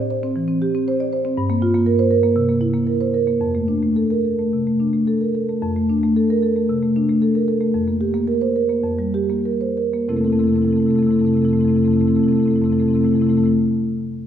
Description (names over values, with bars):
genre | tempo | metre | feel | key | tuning
classical, contemporary piece for solo marimba | 89-124 BPM | 4/4 | rubato | F major | A4 = 442 Hz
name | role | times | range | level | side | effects
marimba with soft mallets | solo | 0.0-13.5 s | F2 to D5 | -16 LUFS | equal | none
room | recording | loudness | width
wet scoring stage reverb, RT60 1.7 s | recorded in a church or concert hall | -16 LUFS | side -9 dB against mid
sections
0.0-5.6 A section; 5.6-10.1 B section; 10.1-14.3 C section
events
slowing down 4.5-10.1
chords
0.0 Am7; 1.4 Gm7; 2.3 C7; 3.4 F6; 7.7 Gm7/F; 10.1 Fmaj7